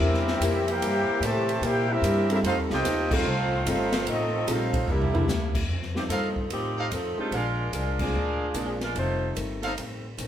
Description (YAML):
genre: jazz, big band swing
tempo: 147 BPM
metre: 4/4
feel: swing 65% on 8ths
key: F mixolydian from 5.7 s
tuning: A4 = 443 Hz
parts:
  - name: warm trumpet section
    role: melody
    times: 0.0-5.3 s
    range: C4 to A5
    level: -28 LUFS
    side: right 1 dB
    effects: none
  - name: bright trombone section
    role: second line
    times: 0.0-5.3 s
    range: C3 to G4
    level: -30 LUFS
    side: equal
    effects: none
  - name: picked steel-string acoustic guitar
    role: accompaniment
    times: 0.0-10.3 s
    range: F2 to A4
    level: -35 LUFS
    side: left 3 dB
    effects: none
  - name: warm concert grand piano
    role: accompaniment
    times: 0.0-10.1 s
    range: G3 to Bb4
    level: -32 LUFS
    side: equal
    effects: none
  - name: bright saxophone section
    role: sustained chords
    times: 0.0-5.7 s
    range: D3 to G4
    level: -35 LUFS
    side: left 1 dB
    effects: none
  - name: upright bass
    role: bass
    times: 0.0-10.3 s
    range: F1 to Bb2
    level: -29 LUFS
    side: equal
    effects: none
  - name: swinging big-band drum kit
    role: drums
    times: 0.1-10.3 s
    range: crash cymbal, hi-hat, kick drum, ride cymbal, snare drum, toms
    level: -32 LUFS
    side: equal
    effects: none
  - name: warm saxophone section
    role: melody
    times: 6.0-9.3 s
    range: Eb3 to C5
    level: -30 LUFS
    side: equal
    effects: none
  - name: clear trumpet section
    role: stabs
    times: 6.1-9.7 s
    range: D4 to F5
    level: -32 LUFS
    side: right 1 dB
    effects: none
room: wet studio reverb, RT60 0.6 s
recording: band playing live in one room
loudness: -24 LUFS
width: side -10 dB against mid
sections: 0.0-5.7 A section; 5.7-10.3 B section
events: band accent 3.0, 7.9; drum fill 4.9-5.3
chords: 0.0 C7; 2.4 F7; 4.9 C13; 5.7 F7; 7.3 Bb7; 9.0 F7